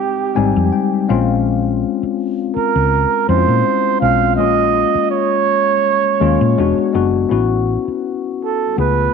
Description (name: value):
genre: lush 1970s-style soul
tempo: 82 BPM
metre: 4/4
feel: swing 54% on 16ths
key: unclear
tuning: A4 = 440 Hz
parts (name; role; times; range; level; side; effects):
- breathy flugelhorn; melody; 0.0-9.1 s; G4 to F5; -17 LUFS; right 11 dB; tape echo
- tine electric piano; accompaniment; 0.0-9.1 s; G3 to Ab5; -17 LUFS; left 10 dB; wide subtle chorus
- hollow-body short-scale fingered electric bass; bass; 0.4-9.1 s; E1 to Bb2; -18 LUFS; equal; none
room: light reverb, studio reverb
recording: 1960s-style stereo with parts hard left and right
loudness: -14 LUFS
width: side -6 dB against mid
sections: 0.0-7.3 A section; 7.3-9.1 B section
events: tine electric piano fill 0.0-1.5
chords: 0.0 Fm7; 1.1 Bbm7; 4.4 Eb7sus4/Bb; 6.6 E7; 7.3 A69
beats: 0.00 0.73 | 1.46 2.19 2.92 3.66 | 4.39 5.12 5.85 6.58 | 7.31 8.05 8.78